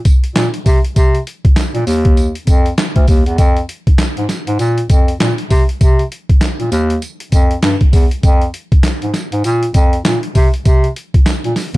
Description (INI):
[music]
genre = R&B, new jack swing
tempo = 99 BPM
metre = 4/4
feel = swing 60% on 16ths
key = unclear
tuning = A4 = 440 Hz
[part]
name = boom bap sampler-style drum kit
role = drums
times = 0.1-11.8 s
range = handclaps, hi-hat, kick drum, snare drum, tambourine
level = -12 LUFS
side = equal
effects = none
[part]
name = clear bass clarinet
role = bass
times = 0.4-11.8 s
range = D2 to C3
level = -16 LUFS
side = equal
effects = none
[sound]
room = little or no reverb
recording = dark, warm production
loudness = -11 LUFS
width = side -19 dB against mid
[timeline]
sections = 0.0-11.8 A section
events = none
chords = none